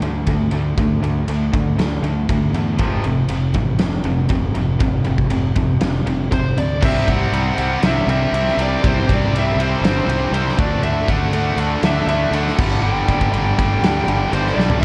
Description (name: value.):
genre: hard rock.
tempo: 120 BPM.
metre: 4/4.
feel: straight.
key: unclear.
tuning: A4 = 440 Hz.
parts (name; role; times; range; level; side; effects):
tight distorted guitar; riff; 0.0-14.8 s; F2 to D4; -26 LUFS; equal; distortion.
tight distorted guitar; riff; 0.0-14.8 s; F2 to D4; -27 LUFS; equal; distortion, slapback echo.
fuzz fingered electric bass; bass; 0.0-14.8 s; F1 to E2; -24 LUFS; equal; overdrive.
big rock drum kit; drums; 0.0-14.8 s; crash cymbal, kick drum, ride cymbal, snare drum, toms; -23 LUFS; equal; none.
smooth overdriven lead guitar; melody; 6.3-14.8 s; C5 to G5; -25 LUFS; equal; slapback echo.
heavy high-gain guitar; riff; 6.8-14.8 s; G2 to D4; -30 LUFS; equal; distortion, slapback echo.
room: moderate lush hall reverb, RT60 2.2 s.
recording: big arena sound, cassette tape.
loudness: -18 LUFS.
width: mono.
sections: 0.0-6.8 A section; 6.8-14.8 B section.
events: drum fill 14.6.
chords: 0.0 D5; 2.8 F5; 6.8 C; 10.6 D; 12.6 G5.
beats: 0.28 | 0.78 1.29 1.79 2.29 | 2.80 3.30 3.80 4.31 | 4.81 5.31 5.82 6.32 | 6.82 7.32 7.83 8.33 | 8.83 9.33 9.83 10.33 | 10.83 11.33 11.83 12.33 | 12.83 13.33 13.83 14.33 | 14.83.